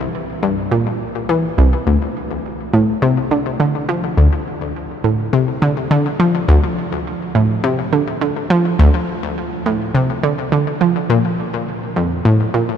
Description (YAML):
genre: ambient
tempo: 104 BPM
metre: 4/4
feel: straight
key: D minor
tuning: A4 = 439 Hz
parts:
  - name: analog pluck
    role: solo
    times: 0.4-12.6 s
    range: C2 to F3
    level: -15 LUFS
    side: equal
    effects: chorus, ping-pong delay
room: wet huge ambient reverb, RT60 7.6 s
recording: none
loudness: -15 LUFS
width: side -8 dB against mid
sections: 0.0-1.9 A section; 1.9-12.8 B section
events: none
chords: none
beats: 0.14 0.71 1.29 | 1.87 2.44 3.02 3.60 | 4.18 4.75 5.33 5.91 | 6.48 7.06 7.64 8.21 | 8.79 9.37 9.95 10.52 | 11.10 11.68 12.25